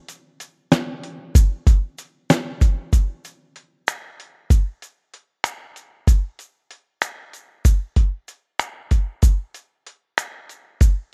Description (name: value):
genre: progressive instrumental, progressive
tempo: 190 BPM (eighths)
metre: 5/8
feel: straight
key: none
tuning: none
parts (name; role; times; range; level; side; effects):
- lo-fi sampler-style drum kit; drums; 0.1-11.0 s; finger snaps, hi-hat, kick drum, snare drum; -18 LUFS; equal; none
- tube shaker; percussion; 0.1-11.1 s; none; -37 LUFS; equal; none
room: digital ambience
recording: dry, close 1970s-style studio recording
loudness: -21 LUFS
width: mono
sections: 0.0-2.9 A section; 2.9-11.1 B section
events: none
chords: none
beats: 0.09 0.41 0.72 1.03 | 1.35 1.67 1.98 2.29 2.61 | 2.92 3.24 3.56 3.87 4.19 | 4.50 4.82 5.13 5.45 5.76 | 6.08 6.39 6.71 7.03 7.34 | 7.66 7.97 8.29 8.61 8.92 | 9.24 9.55 9.87 10.18 10.50 | 10.81